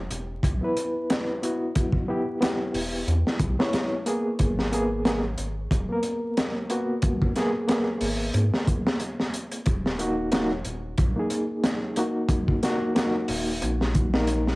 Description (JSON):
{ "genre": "trip hop", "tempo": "91 BPM", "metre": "4/4", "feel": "swing 57% on 16ths", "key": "unclear", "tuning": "A4 = 440 Hz", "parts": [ { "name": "round analog bass", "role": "bass", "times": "0.0-14.6 s", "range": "D#1 to G#2", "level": "-28 LUFS", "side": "equal", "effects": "none" }, { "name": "crunchy breakbeat drum kit", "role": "drums", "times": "0.1-14.6 s", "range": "hi-hat, kick drum, snare drum", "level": "-26 LUFS", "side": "equal", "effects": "none" }, { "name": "overdriven reed electric piano", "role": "accompaniment", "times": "0.6-14.6 s", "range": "A#3 to C#5", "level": "-27 LUFS", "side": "equal", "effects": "fast tremolo, cassette tape" } ], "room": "light reverb", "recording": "home recording on cassette, vinyl crackle", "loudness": "-23 LUFS", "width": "side -23 dB against mid", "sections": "0.0-14.6 A section", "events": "none", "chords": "0.0 Em; 4.4 D#m" }